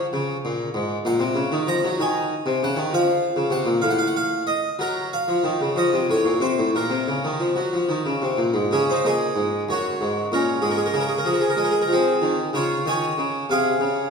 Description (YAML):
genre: classical, baroque-style suite movement for harpsichord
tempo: 59-66 BPM (dotted quarters)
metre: 6/8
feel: rubato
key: Bb minor, Db major from 8.7 s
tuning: A4 = 440 Hz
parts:
  - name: harpsichord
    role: solo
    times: 0.0-14.1 s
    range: Gb2 to Bb5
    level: -20 LUFS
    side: equal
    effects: none
room: wet recital hall reverb, RT60 1.7 s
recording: heard from further back in the room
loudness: -20 LUFS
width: side -5 dB against mid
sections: 0.0-8.7 A section; 8.7-14.1 A section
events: none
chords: 0.0 Db5; 1.1 Gb/Bb; 2.0 Ab7; 2.9 F; 4.8 Gb5; 5.8 F; 6.7 Bbm; 8.7 Db5; 9.7 Gb; 10.6 Ab; 12.6 Db; 13.5 Ab/C